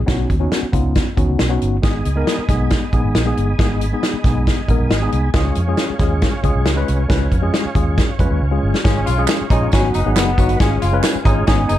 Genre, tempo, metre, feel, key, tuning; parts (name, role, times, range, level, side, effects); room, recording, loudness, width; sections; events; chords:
uptempo 1960s-style soul; 137 BPM; 4/4; straight; A4 = 438 Hz
vintage muted fingered electric bass; bass; 0.0-11.8 s; F#1 to E#2; -19 LUFS; equal
tine electric piano; accompaniment; 0.1-11.7 s; F#3 to G#5; -21 LUFS; left 2 dB; fast stereo tremolo, plate reverb
natural country drum kit; drums; 0.1-11.8 s; hi-hat, kick drum, snare drum; -18 LUFS; equal
tonewheel organ; sustained chords; 1.8-11.8 s; G#4 to D#6; -30 LUFS; right 3 dB; slow rotary speaker, chorus vibrato, plate reverb
electric guitar through a small old amp; riff; 8.8-11.8 s; B3 to E#4; -22 LUFS; left 4 dB; spring reverb
tambourine and handclaps; percussion; 8.9-11.8 s; -28 LUFS; right 15 dB
light reverb; dark, warm production; -14 LUFS; side -13 dB against mid
0.0-8.8 A section; 8.8-11.8 B section
tine electric piano fill 4.7-5.3; drum fill 8.4-8.8
0.1 Badd9; 1.8 G#m; 5.3 C#; 8.8 C#/G#; 9.7 B; 10.6 C#